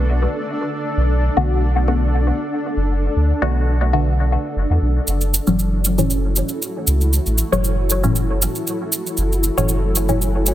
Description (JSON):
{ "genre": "dub techno", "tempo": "117 BPM", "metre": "4/4", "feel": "swing 54% on 16ths", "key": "B minor", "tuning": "A4 = 440 Hz", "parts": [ { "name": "granular cloud pad", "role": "sustained chords", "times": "0.0-10.5 s", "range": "D4 to D5", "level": "-24 LUFS", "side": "equal", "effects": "built-in reverb" }, { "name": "filtered dub chord stab", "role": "stabs", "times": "0.0-10.3 s", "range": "A2 to F#4", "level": "-22 LUFS", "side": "left 1 dB", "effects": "phaser, dub echo" }, { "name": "pure sine sub bass", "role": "bass", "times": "0.0-10.5 s", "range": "F#1 to E2", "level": "-18 LUFS", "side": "equal", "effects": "tube saturation" }, { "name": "cabasa", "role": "percussion", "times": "5.1-10.5 s", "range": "none", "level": "-21 LUFS", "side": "right 2 dB", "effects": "none" } ], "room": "light reverb", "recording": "dense, heavily limited modern master", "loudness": "-16 LUFS", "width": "side -13 dB against mid", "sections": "0.0-10.5 A section", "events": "none", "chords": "0.0 Bm7; 5.1 F#m7", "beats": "0.46 | 0.97 1.49 2.00 2.51 | 3.03 3.54 4.05 4.57 | 5.08 5.59 6.10 6.62 | 7.13 7.64 8.15 8.67 | 9.18 9.69 10.21" }